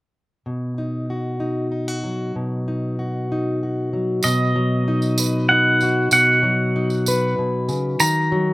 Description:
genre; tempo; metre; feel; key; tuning
acoustic folk duo or small band; 96 BPM; 3/4; straight; B major; A4 = 444 Hz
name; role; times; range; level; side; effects
fingerpicked plugged-in steel-string acoustic guitar; accompaniment; 0.5-8.5 s; B2 to B4; -20 LUFS; left 1 dB; none
pedal steel guitar; melody; 4.2-8.5 s; D#5 to A#5; -18 LUFS; right 1 dB; none
tambourine; percussion; 4.2-8.1 s; none; -26 LUFS; right 5 dB; none
room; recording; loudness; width
little or no reverb; recorded outdoors, with no room sound; -18 LUFS; side -18 dB against mid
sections
0.5-4.2 A section; 4.2-8.5 B section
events
none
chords
0.5 B; 8.0 D#m

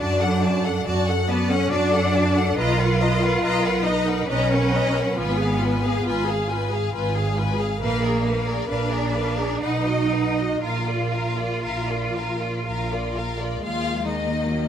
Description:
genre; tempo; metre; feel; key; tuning
classical, slow romantic movement for string orchestra; 58-72 BPM; 3/4; rubato; unclear; A4 = 438 Hz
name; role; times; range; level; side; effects
clear chamber violin section; melody; 0.0-14.7 s; D5 to A#5; -32 LUFS; left 4 dB; none
rich chamber violin section; second line; 0.0-14.7 s; Eb4 to F#5; -28 LUFS; left 5 dB; none
rich chamber viola section; accompaniment; 0.0-14.7 s; Gb3 to B4; -28 LUFS; equal; none
bright studio cello section; bass; 0.0-14.7 s; Eb3 to F4; -25 LUFS; equal; none
rich chamber double bass section; bass; 0.0-14.7 s; Ab1 to F#2; -24 LUFS; right 2 dB; none
room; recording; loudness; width
light reverb; none; -20 LUFS; side -9 dB against mid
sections
0.0-13.6 A section; 13.6-14.7 B section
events
none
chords
0.0 D/F#; 2.6 Bmaj7; 5.2 Fdim/Ab; 7.8 Bb7b9; 9.6 B; 10.6 Bb; 13.6 Ebm

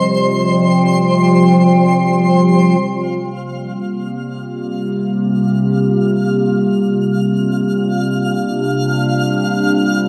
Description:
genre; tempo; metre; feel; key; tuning
ambient; free time; none; none; unclear; A4 = 445 Hz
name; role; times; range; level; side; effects
warbly tape-like pad; sustained chords; 0.0-10.1 s; C3 to G5; -18 LUFS; equal; chorus, built-in reverb
analog drone; drone; 0.0-10.1 s; C3 to G3; -20 LUFS; equal; chorus
twinkling granular texture; texture; 0.0-10.1 s; C5 to F6; -24 LUFS; equal; built-in reverb
room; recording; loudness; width
wet lush hall reverb, RT60 2.6 s; dark, warm production; -15 LUFS; mono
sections
0.0-2.8 A section; 2.8-10.1 B section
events
fade-in on ambient pad 2.8-10.1; fade-in on synth texture 2.8-10.1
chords
0.0 Fsus2; 2.8 Gm7/C; 6.4 Bb/C

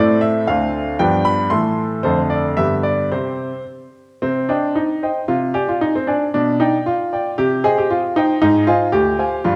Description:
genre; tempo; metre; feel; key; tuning
classical-period piano sonatina; 114 BPM; 2/4; rubato; C major, C minor from 4.2 s; A4 = 440 Hz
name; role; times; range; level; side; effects
bright baby grand piano; solo; 0.0-9.6 s; D2 to C6; -18 LUFS; equal; none
room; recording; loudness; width
moderate recital hall reverb, RT60 1.6 s; none; -18 LUFS; mono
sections
0.0-4.2 A section; 4.2-9.6 B section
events
none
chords
0.5 Dm7; 1.0 G7; 1.5 Am; 2.0 Dm/F; 2.6 G; 3.1 C5; 4.2 Cm; 5.3 Fm13/C; 6.3 G7/B; 7.4 Cm; 8.4 Ab; 8.9 Dm7b5

